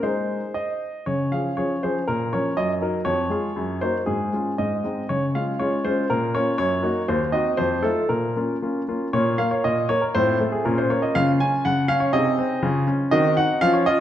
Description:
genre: classical-period piano sonatina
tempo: 120 BPM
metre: 2/4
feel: straight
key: Db major, Bb minor from 7.1 s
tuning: A4 = 438 Hz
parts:
  - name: clear baby grand piano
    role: solo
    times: 0.0-14.0 s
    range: Eb2 to Ab5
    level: -20 LUFS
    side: equal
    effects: none
room: wet recital hall reverb, RT60 1.4 s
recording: dark, warm production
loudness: -20 LUFS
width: side -11 dB against mid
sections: 0.0-1.1 A section; 1.1-9.1 B section; 9.1-14.0 A section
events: none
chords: 0.0 Ab; 1.1 Db; 2.1 Bbm; 2.6 Ebm/Gb; 3.1 Db/F; 3.6 Ebm/Gb; 4.1 Db/Ab; 4.6 Ab; 5.1 Db; 6.1 Bbm; 6.6 Ebm/Gb; 7.1 Cdim/Eb; 7.6 F7; 8.1 Bbm; 9.1 Bb5; 10.2 F/A; 10.6 Bbm; 11.1 Db; 12.1 Ab/C; 12.6 Db; 13.1 Ebm6

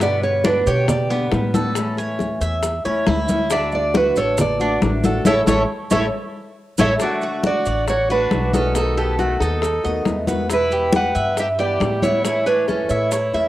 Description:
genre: latin, Cuban son and guajira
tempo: 137 BPM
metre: 4/4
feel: straight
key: D major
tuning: A4 = 439 Hz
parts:
  - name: nylon-string guitar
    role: melody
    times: 0.0-13.5 s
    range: F#4 to F#5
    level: -20 LUFS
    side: right 2 dB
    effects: cassette tape
  - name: fingerpicked steel-string acoustic guitar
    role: accompaniment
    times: 0.0-13.5 s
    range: B2 to G4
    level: -27 LUFS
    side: left 2 dB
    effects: cassette tape
  - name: Cuban tres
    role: arpeggios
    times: 0.0-13.5 s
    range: B3 to E5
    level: -25 LUFS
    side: right 1 dB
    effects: cassette tape
  - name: upright bass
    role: bass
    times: 0.0-13.5 s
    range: A1 to B2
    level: -25 LUFS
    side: equal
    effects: none
  - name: bongos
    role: percussion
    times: 0.0-13.5 s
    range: none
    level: -28 LUFS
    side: left 6 dB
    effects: none
  - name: congas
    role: percussion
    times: 0.0-13.5 s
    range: none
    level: -23 LUFS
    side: left 1 dB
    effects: none
  - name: maracas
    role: percussion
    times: 0.0-13.5 s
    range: none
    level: -34 LUFS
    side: right 5 dB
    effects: none
  - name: bright trumpet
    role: second line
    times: 7.0-13.5 s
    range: A3 to B4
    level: -30 LUFS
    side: right 2 dB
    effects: cassette tape
room: wet spring reverb, RT60 1.4 s, small room reverb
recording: home recording on cassette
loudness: -17 LUFS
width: side -14 dB against mid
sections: 0.0-7.0 A section; 7.0-13.5 B section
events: nylon-string guitar solo 0.0-7.0; band accent 5.3-7.0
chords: 0.0 G; 1.8 A; 3.5 D; 5.3 A; 7.0 D; 8.8 B7; 10.5 Em; 12.2 A

